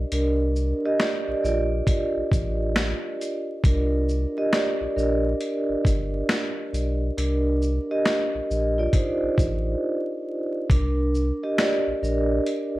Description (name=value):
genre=lo-fi hip hop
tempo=68 BPM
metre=4/4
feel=swing 64% on 16ths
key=C dorian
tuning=A4 = 440 Hz
part: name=vibraphone with soft mallets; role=accompaniment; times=0.0-12.8 s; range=D4 to Eb5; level=-24 LUFS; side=right 1 dB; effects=cassette tape, low-pass filter, plate reverb
part: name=warm sub bass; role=bass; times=0.0-12.8 s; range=G1 to C2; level=-25 LUFS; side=equal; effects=none
part: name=boom bap sampler-style drum kit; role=drums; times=0.1-12.7 s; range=finger snaps, hi-hat, kick drum, shaker, snare drum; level=-24 LUFS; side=equal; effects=none
room=light reverb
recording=vinyl crackle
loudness=-21 LUFS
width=side -17 dB against mid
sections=0.0-10.7 A section; 10.7-12.8 A section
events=vibraphone solo 0.0-10.7, 10.7-12.8; break 9.8-10.7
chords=0.0 Cm9